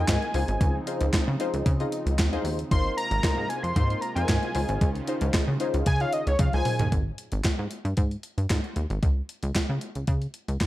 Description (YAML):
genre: early-eighties boogie funk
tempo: 114 BPM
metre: 4/4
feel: straight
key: Ab major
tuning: A4 = 440 Hz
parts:
  - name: fat analog lead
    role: melody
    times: 0.0-6.9 s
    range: Db5 to C6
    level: -30 LUFS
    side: equal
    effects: slapback echo
  - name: funky polysynth comp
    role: accompaniment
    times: 0.0-6.8 s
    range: Eb4 to Eb5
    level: -31 LUFS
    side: left 3 dB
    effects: chorus
  - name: brassy analog pad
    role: sustained chords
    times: 0.0-6.9 s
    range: C3 to F4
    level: -37 LUFS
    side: right 1 dB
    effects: chorus
  - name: plucky analog bass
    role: bass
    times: 0.0-10.7 s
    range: Ab1 to Db3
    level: -27 LUFS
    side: equal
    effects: none
  - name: clean 12-bit digital drum machine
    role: drums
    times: 0.1-10.7 s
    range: handclaps, hi-hat, kick drum, snare drum, toms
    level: -26 LUFS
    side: equal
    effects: gated reverb
room: little or no reverb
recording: none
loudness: -24 LUFS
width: side -16 dB against mid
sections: 0.0-6.9 A section; 6.9-10.7 B section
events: analog synth lead solo 0.0-6.9; drum fill 6.4-6.9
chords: 0.3 Dbmaj9; 2.7 Ab69; 4.6 Dbmaj9; 6.9 Ab5; 9.0 N.C.